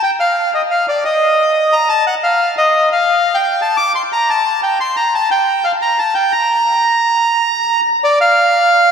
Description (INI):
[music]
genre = tango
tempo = 176 BPM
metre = 3/4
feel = rubato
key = Bb major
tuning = A4 = 440 Hz
[part]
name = bandoneon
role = solo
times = 0.0-8.9 s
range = D5 to D6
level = -12 LUFS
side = equal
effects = tape echo
[sound]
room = wet lush hall reverb, RT60 3.0 s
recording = dreamy mix soaked in reverb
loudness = -12 LUFS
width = side -7 dB against mid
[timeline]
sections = 0.0-8.2 A section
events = none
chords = none